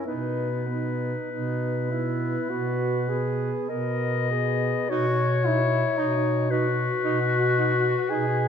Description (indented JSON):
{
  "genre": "classical, lyrical piece for single-reed quartet",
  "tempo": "48-57 BPM",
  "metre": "4/4",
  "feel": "rubato",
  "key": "B major",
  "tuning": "A4 = 440 Hz",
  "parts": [
    { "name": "warm clarinet", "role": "melody", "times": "0.0-8.5 s", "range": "B4 to D#5", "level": "-28 LUFS", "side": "left 6 dB", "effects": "none" },
    { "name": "clear alto saxophone", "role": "second line", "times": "0.0-8.3 s", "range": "D#4 to A#4", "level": "-31 LUFS", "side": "right 8 dB", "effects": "none" },
    { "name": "mellow tenor saxophone", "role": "accompaniment", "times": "0.0-8.5 s", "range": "B3 to G#4", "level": "-28 LUFS", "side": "left 2 dB", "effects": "none" },
    { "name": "mellow bass clarinet", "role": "bass", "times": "0.1-8.5 s", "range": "B2", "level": "-27 LUFS", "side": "right 1 dB", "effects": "none" }
  ],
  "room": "moderate scoring stage reverb, RT60 1.9 s",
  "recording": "none",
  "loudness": "-23 LUFS",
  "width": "side -8 dB against mid",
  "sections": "0.0-4.9 A section; 4.9-8.5 A section",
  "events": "none",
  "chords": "0.1 B"
}